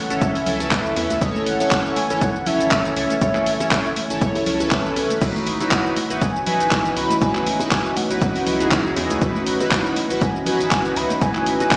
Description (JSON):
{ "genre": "deep house", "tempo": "120 BPM", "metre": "4/4", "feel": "swing 56% on 16ths", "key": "C# minor", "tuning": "A4 = 440 Hz", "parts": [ { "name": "warm velvety synth lead", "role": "melody", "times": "0.0-11.8 s", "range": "D#5 to B5", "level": "-24 LUFS", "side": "equal", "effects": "chorus, digital delay" }, { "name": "deep dark ambient pad", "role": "sustained chords", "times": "0.0-11.8 s", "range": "E3 to G#5", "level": "-30 LUFS", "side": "equal", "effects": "chorus, built-in reverb, sidechain pumping" }, { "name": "chorused polysynth", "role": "stabs", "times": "0.1-11.8 s", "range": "C#4 to C#5", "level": "-22 LUFS", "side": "equal", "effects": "phaser, sidechain pumping, digital delay" }, { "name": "round analog bass", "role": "bass", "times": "0.1-11.6 s", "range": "G#1 to E2", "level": "-34 LUFS", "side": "equal", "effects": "sidechain pumping" }, { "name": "deep house drum kit", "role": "drums", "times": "0.1-11.8 s", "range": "crash cymbal, handclaps, hi-hat, shaker", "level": "-24 LUFS", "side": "equal", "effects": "overdrive" }, { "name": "breakbeat sampler-style drum kit", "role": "drums", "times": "0.2-11.8 s", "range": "hi-hat, shaker, snare drum", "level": "-36 LUFS", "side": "equal", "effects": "none" }, { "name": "electronic kick drum", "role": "drums", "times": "0.2-11.8 s", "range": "none", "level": "-22 LUFS", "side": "equal", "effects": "none" }, { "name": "congas and bongos", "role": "percussion", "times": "0.5-11.7 s", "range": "none", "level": "-30 LUFS", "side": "equal", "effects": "sidechain pumping on perc" }, { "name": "airy breathy pad", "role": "texture", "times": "5.2-11.8 s", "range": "C#4 to B4", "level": "-27 LUFS", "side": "equal", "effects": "chorus, sidechain pumping" } ], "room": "moderate digital room reverb, RT60 1.0 s", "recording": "played on a big sound system in a bare room, large studio reverb, small speaker sound", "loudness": "-17 LUFS", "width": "side -29 dB against mid", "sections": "0.0-11.8 A section", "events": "none", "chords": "0.0 A; 5.2 C#m11", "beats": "0.21 0.71 | 1.22 1.72 2.21 2.71 | 3.21 3.71 4.21 4.71 | 5.21 5.71 6.21 6.71 | 7.21 7.71 8.21 8.71 | 9.21 9.71 10.21 10.71 | 11.21 11.71" }